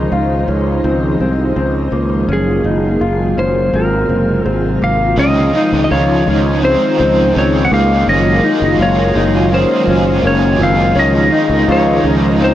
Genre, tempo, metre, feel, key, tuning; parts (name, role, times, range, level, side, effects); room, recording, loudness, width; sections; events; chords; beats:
dream pop; 83 BPM; 4/4; straight; Db major; A4 = 440 Hz
warm analog pad; sustained chords; 0.0-12.5 s; C3 to C5; -17 LUFS; right 1 dB; chorus
mellow electric guitar; arpeggios; 0.0-12.5 s; Bb3 to F4; -18 LUFS; left 4 dB; wide subtle chorus, tape echo
sustaining fretless electric bass; bass; 0.0-12.5 s; Gb1 to Db2; -16 LUFS; equal
clean lap steel guitar; melody; 2.3-12.5 s; Ab4 to Gb5; -17 LUFS; equal; tape echo
raw garage guitar; accompaniment; 5.2-12.5 s; Db3 to Ab4; -21 LUFS; right 3 dB; overdrive, tremolo, wide subtle chorus
light reverb, digital ambience; dry, gritty hardware recording; -11 LUFS; side -12 dB against mid
0.0-5.2 A section; 5.2-12.5 B section
0.0 Dbmaj9; 2.3 Gbmaj9; 3.7 Ab13; 5.2 Dbmaj9; 8.1 Gbmaj9; 11.0 Dbmaj9
0.12 0.85 1.57 | 2.29 3.02 3.74 4.46 | 5.18 5.91 6.63 7.35 | 8.08 8.80 9.52 10.24 | 10.97 11.69 12.41